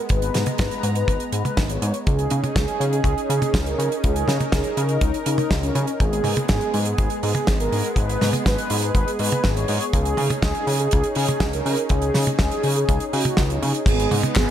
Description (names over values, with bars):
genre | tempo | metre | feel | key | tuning
italo disco | 122 BPM | 4/4 | straight | G# minor | A4 = 440 Hz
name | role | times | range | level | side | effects
lush unison pad | sustained chords | 0.0-14.5 s | G#3 to A#5 | -28 LUFS | equal | chorus
mellow synth brass | melody | 0.1-14.5 s | B3 to C#5 | -26 LUFS | right 1 dB | chorus, tape echo
fat analog bass | bass | 0.1-14.5 s | G#1 to C#3 | -24 LUFS | equal | none
damped 70s drum kit | drums | 0.1-14.5 s | crash cymbal, handclaps, hi-hat, snare drum, toms | -25 LUFS | right 2 dB | studio reverb, gated reverb
kick drum | drums | 0.1-14.5 s | none | -22 LUFS | equal | studio reverb
room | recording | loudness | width
light reverb, small room ambience | none | -19 LUFS | side -10 dB against mid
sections
0.0-13.9 A section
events
none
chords
0.0 G#madd9; 2.1 C#sus2; 6.0 G#m; 9.9 C#sus2; 13.9 G#m